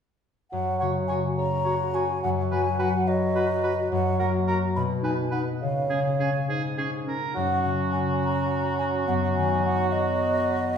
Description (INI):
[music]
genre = cinematic, playful, whimsical film cue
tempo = 70 BPM (dotted quarters)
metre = 6/8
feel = straight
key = F# major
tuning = A4 = 440 Hz
[part]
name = mellow hollow concert flute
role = second line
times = 0.5-10.8 s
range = D#5 to B5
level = -29 LUFS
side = left 1 dB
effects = none
[part]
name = mellow bassoon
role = accompaniment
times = 0.5-10.7 s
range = G#2 to F#3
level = -29 LUFS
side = right 5 dB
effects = none
[part]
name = concert harp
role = arpeggios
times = 0.5-10.8 s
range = F#2 to C#6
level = -28 LUFS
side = left 5 dB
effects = none
[part]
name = mellow clarinet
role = second line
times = 0.8-10.8 s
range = B3 to F#4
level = -32 LUFS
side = equal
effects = none
[part]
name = warm oboe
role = second line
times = 0.8-10.7 s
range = F#4 to C#5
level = -33 LUFS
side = right 3 dB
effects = none
[sound]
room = wet recital hall reverb, RT60 1.6 s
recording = heard from further back in the room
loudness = -23 LUFS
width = side -7 dB against mid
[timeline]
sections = 0.5-10.8 A section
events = none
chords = 0.5 F#; 2.2 B/F#; 3.9 F#; 4.8 B; 5.6 C#; 7.4 F#; 9.1 B/F#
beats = | 0.51 1.37 | 2.22 3.07 | 3.92 4.77 | 5.62 6.49 | 7.36 8.21 | 9.07 9.93